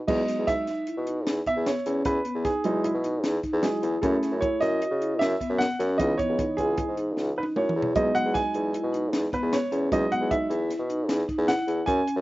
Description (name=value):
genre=progressive instrumental, band music in an uneven meter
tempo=153 BPM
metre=5/4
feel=straight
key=E major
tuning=A4 = 441 Hz
part: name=warm grand piano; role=accompaniment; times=0.0-12.2 s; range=E3 to G#5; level=-27 LUFS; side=right 2 dB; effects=slapback echo
part: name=vibraphone with soft mallets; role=arpeggios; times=0.1-12.1 s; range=B3 to F#4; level=-30 LUFS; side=left 1 dB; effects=none
part: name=warm bassoon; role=bass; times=0.1-12.2 s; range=C#2 to C#3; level=-27 LUFS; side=equal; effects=none
part: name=compact cocktail drum kit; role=drums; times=0.1-12.2 s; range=crash cymbal, hi-hat, kick drum, snare drum, toms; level=-33 LUFS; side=left 1 dB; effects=none
room=little or no reverb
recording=recorded outdoors, with no room sound, nothing above 7.7 kHz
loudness=-23 LUFS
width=side -17 dB against mid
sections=0.1-12.2 A section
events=grand piano solo 0.1-12.2; drum fill 7.2-8.0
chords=0.1 Emaj7; 4.0 F#m7; 6.0 C#m9; 8.0 Emaj7